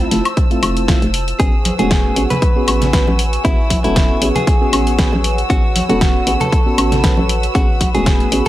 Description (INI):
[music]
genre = deep house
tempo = 117 BPM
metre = 4/4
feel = swing 54% on 16ths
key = A major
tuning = A4 = 440 Hz
[part]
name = hollow soft pad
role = sustained chords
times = 0.0-8.5 s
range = B4 to E6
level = -27 LUFS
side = left 1 dB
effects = chorus, vintage 12-bit sampler grit, sidechain pumping
[part]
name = mellow FM electric piano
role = stabs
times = 0.0-8.4 s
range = A3 to B4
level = -21 LUFS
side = right 1 dB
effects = chorus, tremolo, sidechain pumping, digital delay
[part]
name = hollow knocking FM bass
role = bass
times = 0.0-8.4 s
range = E1 to A1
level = -19 LUFS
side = equal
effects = sidechain pumping
[part]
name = deep house drum kit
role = drums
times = 0.0-8.5 s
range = hi-hat, snare drum, woodblock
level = -20 LUFS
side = left 1 dB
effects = none
[part]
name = deep dark ambient pad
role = texture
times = 0.0-8.5 s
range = F3 to E6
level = -30 LUFS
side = equal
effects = chorus, built-in reverb, sidechain pumping
[part]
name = rich symphonic violin section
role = texture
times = 0.0-8.5 s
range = E6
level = -28 LUFS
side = right 1 dB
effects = sidechain pumping
[part]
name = electronic kick drum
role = drums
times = 0.4-8.2 s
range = none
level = -15 LUFS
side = equal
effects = overdrive
[part]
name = direct-recorded clean electric guitar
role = melody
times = 1.4-8.5 s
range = E4 to B4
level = -21 LUFS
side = equal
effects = dub echo
[part]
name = congas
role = percussion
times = 1.7-8.5 s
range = none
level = -22 LUFS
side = right 1 dB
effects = none
[sound]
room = digital ambience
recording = none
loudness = -12 LUFS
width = side -15 dB against mid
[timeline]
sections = 0.0-8.5 A section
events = none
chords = 0.0 Fmaj7; 1.4 Amaj13